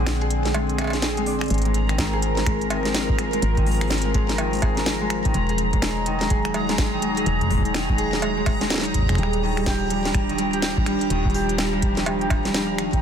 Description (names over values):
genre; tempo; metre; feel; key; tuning
IDM; 125 BPM; 4/4; swing 62% on 16ths; unclear; A4 = 443 Hz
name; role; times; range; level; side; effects
warbly tape-like pad; sustained chords; 0.0-13.0 s; D3 to Bb4; -27 LUFS; right 1 dB; chorus, built-in reverb, phaser
Celtic harp; arpeggios; 0.0-13.0 s; D3 to Ab4; -26 LUFS; left 2 dB; ping-pong delay
woody FM bass; bass; 0.0-13.0 s; Eb1 to Bb1; -27 LUFS; equal; none
organic electronic drum kit; drums; 0.1-13.0 s; cowbell, finger snaps, hi-hat, snare drum; -27 LUFS; equal; soft clipping on snare, ping-pong delay
bubbling stepped-filter texture; texture; 1.5-13.0 s; Bb5; -30 LUFS; right 2 dB; chorus, built-in reverb
electronic kick drum; drums; 2.0-13.0 s; none; -23 LUFS; equal; none
room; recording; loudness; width
light reverb; dense, heavily limited modern master; -20 LUFS; side -8 dB against mid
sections
0.0-13.0 A section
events
break 0.0-1.5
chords
0.0 Bb9; 1.5 Ab69; 5.3 Emaj9; 9.2 Ebmaj9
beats
0.06 0.54 1.02 | 1.50 1.98 2.46 2.94 | 3.42 3.90 4.38 4.86 | 5.34 5.82 6.30 6.78 | 7.26 7.74 8.22 8.70 | 9.18 9.66 10.14 10.62 | 11.10 11.58 12.06 12.54